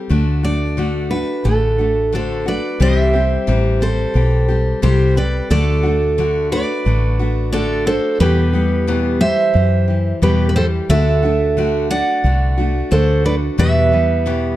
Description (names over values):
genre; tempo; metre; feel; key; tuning
honky-tonk and classic country; 89 BPM; 4/4; straight; unclear; A4 = 440 Hz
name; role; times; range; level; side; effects
picked steel-string acoustic guitar; accompaniment; 0.0-14.6 s; E2 to G4; -20 LUFS; left 2 dB; none
deep dub fingered electric bass; bass; 0.1-14.6 s; A1 to F#2; -17 LUFS; equal; none
picked steel-string acoustic guitar; melody; 0.4-14.6 s; G4 to F#5; -19 LUFS; right 2 dB; plate reverb
room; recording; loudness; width
light reverb; dark, warm production; -14 LUFS; side -14 dB against mid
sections
0.0-2.8 A section; 2.8-14.6 B section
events
none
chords
0.1 D; 2.8 C; 5.5 D; 8.2 Em; 10.9 D; 13.6 Em